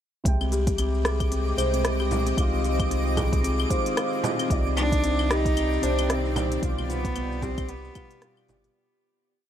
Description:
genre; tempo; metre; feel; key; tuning
organic downtempo; 113 BPM; 4/4; swing 58% on 16ths; unclear; A4 = 441 Hz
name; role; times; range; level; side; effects
felt-muted upright piano; accompaniment; 0.2-8.8 s; B2 to G5; -34 LUFS; right 2 dB; sidechain pumping, digital delay
warm sub bass; bass; 0.2-8.7 s; G1 to C2; -27 LUFS; equal; none
twinkling granular texture; texture; 0.8-8.8 s; D6; -36 LUFS; right 1 dB; built-in reverb
bowed-like drone; sustained chords; 1.0-8.7 s; Eb3 to G5; -34 LUFS; equal; built-in reverb, phaser, sidechain pumping
deep house drum kit; drums; 0.3-8.7 s; claves, hi-hat, rim click, shaker; -32 LUFS; left 1 dB; none
electronic kick drum; drums; 0.3-8.1 s; none; -27 LUFS; equal; none
buzzing kalimba; arpeggios; 0.4-8.7 s; B3 to C5; -29 LUFS; left 3 dB; digital delay
frame drum; percussion; 2.1-8.6 s; none; -32 LUFS; right 4 dB; none
clear cello; melody; 4.8-8.5 s; B3 to Eb4; -29 LUFS; right 1 dB; digital delay
room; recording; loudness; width
small room reverb; none; -22 LUFS; side -10 dB against mid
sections
0.3-8.8 groove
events
fade-out 5.9-8.8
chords
0.3 Abmaj7/C; 2.4 Fm7/C; 4.5 Cmadd9; 6.6 G7/C

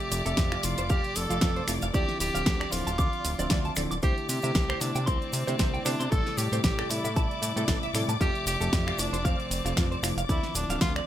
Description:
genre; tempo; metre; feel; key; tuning
nu-disco, nu disco; 115 BPM; 4/4; swing 56% on 16ths; unclear; A4 = 440 Hz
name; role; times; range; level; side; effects
breathy tenor saxophone; melody; 0.0-10.9 s; C4 to A4; -33 LUFS; right 1 dB; digital delay
bright reed electric piano; accompaniment; 0.0-11.1 s; C3 to E5; -34 LUFS; equal; analog chorus, sidechain pumping
warm studio string section; sustained chords; 0.0-11.1 s; D5 to D6; -37 LUFS; left 5 dB; sidechain pumping
pop drum kit; drums; 0.0-11.1 s; finger snaps, hi-hat, shaker, snare drum; -32 LUFS; equal; none
fat analog bass; bass; 0.1-11.0 s; D1 to C3; -32 LUFS; equal; none
cabasa; percussion; 0.1-10.9 s; none; -42 LUFS; left 4 dB; none
direct-recorded clean electric guitar; riff; 0.3-11.0 s; F4 to D6; -36 LUFS; right 2 dB; lush chorus, vintage 12-bit sampler grit
electronic kick drum; drums; 0.4-10.9 s; none; -28 LUFS; equal; none
room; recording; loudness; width
light reverb; bright 1980s-style digital production; -25 LUFS; side -12 dB against mid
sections
0.0-11.1 A section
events
none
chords
0.0 Fmaj7; 1.9 Dm9; 4.0 Cmaj13; 6.1 Am7; 8.2 Fmaj7; 10.3 Dm9

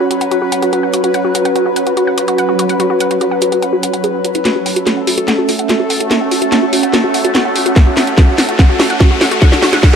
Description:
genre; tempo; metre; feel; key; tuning
psychedelic trance; 145 BPM; 4/4; straight; F# minor; A4 = 440 Hz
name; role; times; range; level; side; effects
bubbling stepped-filter texture; sustained chords; 0.0-10.0 s; F#3 to B4; -18 LUFS; equal; chorus, built-in reverb, sidechain pumping
wide unison pluck; riff; 0.0-10.0 s; E4 to F#5; -18 LUFS; moving between left 4 dB and right 2 dB; auto-pan, sidechain pumping, ping-pong delay
ethereal airy pad; texture; 0.0-10.0 s; C#4 to F#5; -19 LUFS; right 2 dB; ensemble chorus, built-in reverb, sidechain pumping
garage drum kit; drums; 0.1-10.0 s; hi-hat, snare drum; -16 LUFS; equal; none
riser; sound effects; 6.4-10.0 s; none; -23 LUFS; left 1 dB; none
electronic kick drum; drums; 7.8-9.9 s; none; -8 LUFS; equal; none
room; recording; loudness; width
moderate lush hall reverb, RT60 2.3 s; none; -11 LUFS; side -7 dB against mid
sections
0.0-4.5 A section; 4.5-10.0 B section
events
build-up 4.5-10.0; drum fill 4.5-10.0; filter sweep on synth arpeggio sound 4.5-10.0; riser 6.4-10.0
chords
0.0 F#5

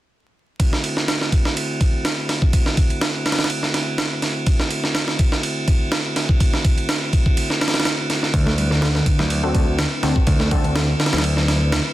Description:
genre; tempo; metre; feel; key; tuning
breakbeat, breaks; 124 BPM; 4/4; swing 54% on 16ths; D mixolydian; A4 = 440 Hz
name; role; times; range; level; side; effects
tonewheel organ; sustained chords; 0.6-11.9 s; D3 to B4; -26 LUFS; right 1 dB; overdrive, stopped rotary speaker, sidechain pumping, low-pass filter
breakbeat sampler-style drum kit; drums; 0.6-11.8 s; kick drum, ride cymbal, snare drum; -18 LUFS; equal; small room ambience
reed electric piano; riff; 8.3-11.8 s; D3 to A3; -23 LUFS; equal; fast tremolo, ping-pong delay
modern bright picked electric bass; bass; 8.3-11.8 s; D2; -21 LUFS; equal; tube saturation
orchestra-hit-like synth stab; stabs; 9.4-11.9 s; C4 to A4; -27 LUFS; left 3 dB; built-in reverb, cassette tape, ping-pong delay
room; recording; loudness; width
little or no reverb; dense, heavily limited modern master, vinyl crackle; -17 LUFS; side -15 dB against mid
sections
0.6-11.9 A section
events
filter sweep on tonewheel organ 0.6-11.9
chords
0.6 D7

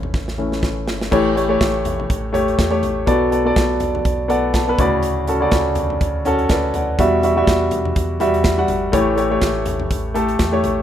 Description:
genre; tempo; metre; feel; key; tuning
piano-driven pop; 123 BPM; 4/4; swing 56% on 16ths; unclear; A4 = 440 Hz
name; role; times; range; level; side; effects
clear baby grand piano; accompaniment; 0.0-10.8 s; A2 to B5; -17 LUFS; left 1 dB; none
sub bass with octave; bass; 0.0-10.8 s; G1 to E2; -25 LUFS; equal; none
modern studio drum kit; drums; 0.0-10.8 s; crash cymbal, hi-hat, kick drum, snare drum, toms; -22 LUFS; equal; none
room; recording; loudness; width
small room ambience; rough home demo mix; -16 LUFS; side -10 dB against mid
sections
0.0-1.1 A section; 1.1-10.8 B section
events
grand piano solo 0.0-1.1; drum fill 0.1-1.1; grand piano fill 4.1-5.0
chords
0.0 A; 1.1 A7; 3.1 Bm7; 4.8 Dmaj7; 7.0 Emadd9; 8.9 A7

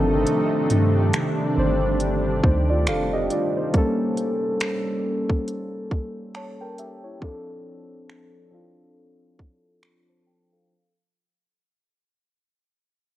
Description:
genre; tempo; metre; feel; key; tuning
contemporary R&B; 69 BPM; 4/4; swing 58% on 16ths; unclear; A4 = 440 Hz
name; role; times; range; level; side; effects
muted felt-like synth keys; accompaniment; 0.0-10.9 s; Eb3 to A5; -24 LUFS; equal; chorus, low-pass filter, cassette tape
granular cloud pad; sustained chords; 0.0-3.7 s; C3 to D4; -26 LUFS; equal; built-in reverb, sidechain pumping, low-pass filter, cassette tape
soft 808-style bass; bass; 0.0-3.3 s; F1 to G2; -23 LUFS; equal; none
trap drum kit; drums; 0.3-10.1 s; finger snaps, hi-hat, kick drum; -24 LUFS; equal; cassette tape
room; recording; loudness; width
digital ambience; home recording on cassette; -20 LUFS; side -14 dB against mid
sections
0.0-10.7 A section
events
fade-out 0.0-10.7; filter sweep 0.0-10.7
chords
0.0 Cm69/G; 3.7 A7b9; 7.2 Dm7

